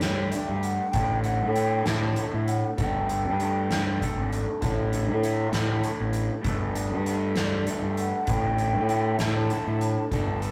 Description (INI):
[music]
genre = psychedelic rock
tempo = 65 BPM (dotted quarters)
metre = 6/8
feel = straight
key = unclear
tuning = A4 = 440 Hz
[part]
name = mellow hollow concert flute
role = melody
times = 0.0-4.3, 7.4-10.5 s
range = C#5 to A5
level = -33 LUFS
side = equal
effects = none
[part]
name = electric guitar through a small old amp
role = riff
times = 0.0-10.5 s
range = A2 to A4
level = -33 LUFS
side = equal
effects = phaser
[part]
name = fuzz fingered electric bass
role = bass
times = 0.0-10.5 s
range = G1 to A2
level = -29 LUFS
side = equal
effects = overdrive
[part]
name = soft-mallet drum kit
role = drums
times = 0.0-10.5 s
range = hi-hat, kick drum, snare drum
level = -34 LUFS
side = equal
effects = none
[sound]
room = moderate small room reverb, RT60 0.5 s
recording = rough rehearsal-room recording, tube saturation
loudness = -26 LUFS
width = mono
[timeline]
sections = 0.0-10.5 A section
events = none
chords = 0.0 Gsus2; 1.0 Asus4; 2.8 Gsus2; 4.6 Asus4; 6.5 Gsus2; 8.3 Asus4